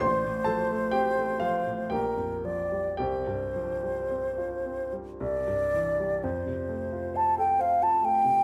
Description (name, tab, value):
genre	classical, romantic duo for flute and grand piano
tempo	53-71 BPM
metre	3/4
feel	rubato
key	F major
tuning	A4 = 440 Hz
part	mellow hollow concert flute	melody	0.0-8.4 s	Bb4 to A5	-29 LUFS	equal	none
part	dark grand piano	accompaniment	0.0-8.4 s	A1 to C6	-34 LUFS	equal	none
room	moderate recital hall reverb, RT60 1.7 s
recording	none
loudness	-28 LUFS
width	mono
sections	0.0-6.2 A section; 6.2-8.4 B section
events	none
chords	0.0 F/A; 1.9 Gm7/Bb; 3.0 Csus4; 5.2 C; 6.2 F